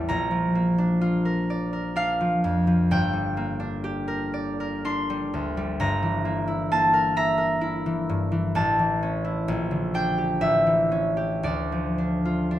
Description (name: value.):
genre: classical, solo harp piece.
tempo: 63 BPM.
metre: 3/4.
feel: uneven beats, rubato.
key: unclear.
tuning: A4 = 440 Hz.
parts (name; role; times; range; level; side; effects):
concert harp; solo; 0.0-12.6 s; G1 to C6; -22 LUFS; equal; none.
room: moderate recital hall reverb, RT60 1.5 s.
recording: minimal, uncompressed stereo recording.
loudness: -22 LUFS.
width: side -12 dB against mid.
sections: 0.0-12.6 A section.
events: none.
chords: 0.1 Bb; 2.9 Gm; 5.8 Edim/G; 8.5 A; 9.5 Gm/Bb; 10.4 A7; 11.5 Dm.